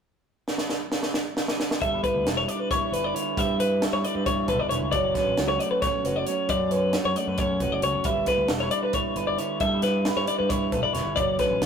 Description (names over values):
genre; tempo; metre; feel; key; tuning
math rock and midwest emo; 269 BPM (eighths); 7/8; straight; G lydian; A4 = 443 Hz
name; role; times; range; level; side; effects
crisp fusion drum kit; drums; 0.5-11.7 s; hi-hat, kick drum, snare drum; -29 LUFS; right 1 dB; none
electric guitar through a small old amp; accompaniment; 1.8-11.7 s; D3 to C#5; -28 LUFS; right 3 dB; none
twelve-string electric guitar; arpeggios; 1.8-11.6 s; B4 to E5; -25 LUFS; left 3 dB; none
growling fingered electric bass; bass; 1.8-11.7 s; E1 to G2; -31 LUFS; equal; overdrive
room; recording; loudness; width
moderate stone room reverb, RT60 1.1 s; rough rehearsal-room recording; -22 LUFS; side -7 dB against mid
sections
0.3-1.8 A section; 1.8-11.7 B section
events
drum fill 0.5-1.8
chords
0.3 N.C.; 1.8 G6; 4.9 Dmaj7/F#; 8.1 G6